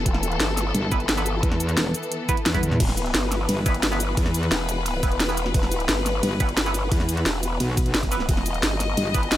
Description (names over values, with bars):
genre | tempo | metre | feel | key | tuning
dark technical drum and bass | 175 BPM | 4/4 | straight | E harmonic minor | A4 = 440 Hz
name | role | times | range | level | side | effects
warm studio string section | sustained chords | 0.0-9.4 s | E3 to D#5 | -28 LUFS | left 3 dB | sidechain pumping
growl bass | bass | 0.0-9.4 s | E1 to G1 | -26 LUFS | equal | chorus, tube saturation
drum and bass drum kit | drums | 0.1-9.4 s | crash cymbal, hi-hat, ride cymbal, shaker, snare drum, toms | -26 LUFS | equal | overdrive
electronic kick drum | drums | 0.1-9.2 s | none | -24 LUFS | equal | overdrive
metallic wobble bass | bass | 0.7-9.1 s | E1 to E2 | -24 LUFS | equal | chorus
band-passed chord stab | stabs | 0.9-9.2 s | B3 to B4 | -32 LUFS | right 4 dB | phaser, dub echo
room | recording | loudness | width
little or no reverb | none | -20 LUFS | side -13 dB against mid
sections
0.0-9.4 A section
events
drum fill 2.5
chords
0.0 E5